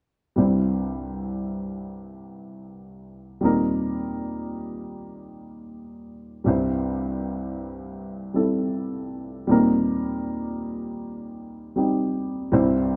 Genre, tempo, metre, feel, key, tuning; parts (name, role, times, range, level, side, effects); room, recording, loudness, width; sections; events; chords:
pop; 79 BPM; 4/4; straight; A4 = 440 Hz
dark upright piano; accompaniment; 0.4-13.0 s; C2 to C5; -26 LUFS; equal
moderate studio reverb, RT60 0.7 s; band playing live in one room; -25 LUFS; mono
0.4-12.5 A section
0.4 C; 3.4 Eb6; 6.5 C; 9.5 Eb6